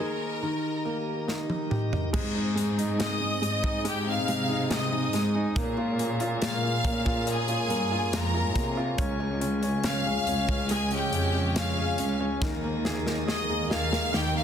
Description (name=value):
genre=pop ballad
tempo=70 BPM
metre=4/4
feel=straight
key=Ab major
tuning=A4 = 440 Hz
part: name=bright studio violin section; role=melody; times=0.0-14.4 s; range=G4 to F6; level=-31 LUFS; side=left 1 dB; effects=none
part: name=clear concert grand piano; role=accompaniment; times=0.0-14.4 s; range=Eb3 to Bb4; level=-32 LUFS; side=right 2 dB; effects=none
part: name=tonewheel organ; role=sustained chords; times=0.0-14.4 s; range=Db3 to Db5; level=-37 LUFS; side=equal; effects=slow rotary speaker
part: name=picked steel-string acoustic guitar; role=arpeggios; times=0.0-14.4 s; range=Ab2 to Ab4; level=-37 LUFS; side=left 8 dB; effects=none
part: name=modern studio drum kit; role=drums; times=1.3-14.3 s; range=crash cymbal, hi-hat, kick drum, snare drum, toms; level=-31 LUFS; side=equal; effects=none
part: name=muted studio cello section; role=bass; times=2.1-14.4 s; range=Db2 to C3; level=-30 LUFS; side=equal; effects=none
room=light reverb, studio ambience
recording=dense, heavily limited modern master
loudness=-25 LUFS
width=side -8 dB against mid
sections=0.0-2.1 A section; 2.1-14.4 B section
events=break 0.0-2.1; drum fill 1.3-2.1, 12.4-14.4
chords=0.4 Eb; 2.1 Ab; 5.6 Bbm7; 9.0 Db; 12.4 Ebsus4